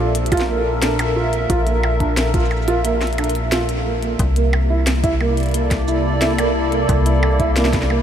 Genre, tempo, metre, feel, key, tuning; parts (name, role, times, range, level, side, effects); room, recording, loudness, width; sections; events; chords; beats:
IDM; 89 BPM; 4/4; straight; Bb lydian; A4 = 440 Hz
hollow soft pad; sustained chords; 0.0-8.0 s; Bb2 to E5; -21 LUFS; equal; chorus, sidechain pumping
felt-muted upright piano; arpeggios; 0.0-8.0 s; Bb3 to F4; -22 LUFS; right 3 dB; diffuse ambient delay
metallic FM bass; bass; 0.0-8.0 s; Bb1 to C2; -20 LUFS; left 1 dB; tube saturation
glitchy drum kit; drums; 0.1-8.0 s; hi-hat, percussion blips, shaker, snare drum; -25 LUFS; equal; diffuse ambient delay
electronic kick drum; drums; 0.3-7.9 s; -21 LUFS; left 1 dB
moderate huge ambient reverb, RT60 7.9 s; dreamy mix soaked in reverb; -16 LUFS; side -9 dB against mid
0.0-8.0 A section
0.0 Bbmaj9; 4.2 C13
0.15 0.82 | 1.50 2.17 2.85 3.52 | 4.20 4.87 5.54 6.22 | 6.89 7.57